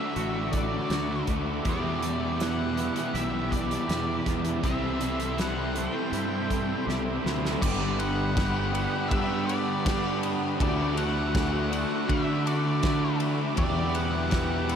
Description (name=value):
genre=rock, shoegaze and dream pop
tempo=80 BPM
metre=4/4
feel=straight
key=G major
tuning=A4 = 440 Hz
part: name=octave-fuzz lead guitar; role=melody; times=0.0-14.8 s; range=D5 to G5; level=-34 LUFS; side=left 1 dB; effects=distortion, ping-pong delay
part: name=warm analog pad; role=sustained chords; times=0.0-14.8 s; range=F#4 to D6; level=-35 LUFS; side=left 1 dB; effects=chorus
part: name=twangy electric guitar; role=arpeggios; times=0.0-14.8 s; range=E3 to G4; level=-38 LUFS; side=right 1 dB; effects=ensemble chorus, ping-pong delay
part: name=biting overdriven guitar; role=riff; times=0.0-7.6 s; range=E2 to D4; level=-35 LUFS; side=right 3 dB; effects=none
part: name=overdriven electric guitar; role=riff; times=0.0-14.8 s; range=E2 to G4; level=-33 LUFS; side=right 8 dB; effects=reverse reverb
part: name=thick fuzz guitar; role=riff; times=0.0-14.8 s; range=E2 to D4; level=-33 LUFS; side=left 7 dB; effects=distortion, analog chorus
part: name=fuzz fingered electric bass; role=bass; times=0.2-14.8 s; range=G1 to D3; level=-31 LUFS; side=equal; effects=overdrive
part: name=loose indie drum kit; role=drums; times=0.2-14.8 s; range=crash cymbal, hi-hat, kick drum, ride cymbal, snare drum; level=-31 LUFS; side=equal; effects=none
room=wet huge ambient reverb, RT60 7.8 s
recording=dreamy mix soaked in reverb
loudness=-25 LUFS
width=side -8 dB against mid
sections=0.0-7.6 A section; 7.6-14.8 B section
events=drum fill 6.9-7.6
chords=0.0 Dadd9; 1.7 Em7; 4.6 C6; 7.6 Gmaj7; 10.6 Dadd9; 13.6 Em7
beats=0.16 0.91 | 1.65 2.40 3.15 3.89 | 4.64 5.38 6.13 6.87 | 7.62 8.36 9.11 9.85 | 10.60 11.34 12.09 12.83 | 13.57 14.32